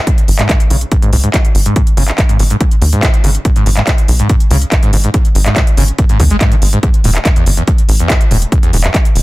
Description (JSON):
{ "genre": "driving peak-time techno", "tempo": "142 BPM", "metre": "4/4", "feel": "straight", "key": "G# harmonic minor", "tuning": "A4 = 438 Hz", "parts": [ { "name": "overdriven acid bass", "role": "riff", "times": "0.1-9.0 s", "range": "E1 to G#3", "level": "-17 LUFS", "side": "equal", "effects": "distortion, wide subtle chorus, sidechain pumping, digital delay" }, { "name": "electronic kick drum", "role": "drums", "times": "0.1-9.0 s", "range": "none", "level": "-11 LUFS", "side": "equal", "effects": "overdrive" }, { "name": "techno drum kit", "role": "drums", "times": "0.1-9.2 s", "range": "handclaps, hi-hat", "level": "-18 LUFS", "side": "equal", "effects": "overdrive" }, { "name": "tight sequencer bass", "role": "bass", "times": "0.3-9.2 s", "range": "E1 to D#2", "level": "-11 LUFS", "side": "equal", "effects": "sidechain pumping" } ], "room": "digital ambience", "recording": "dense, heavily limited modern master", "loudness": "-9 LUFS", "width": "side -19 dB against mid", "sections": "0.0-9.2 A section", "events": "none", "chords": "none" }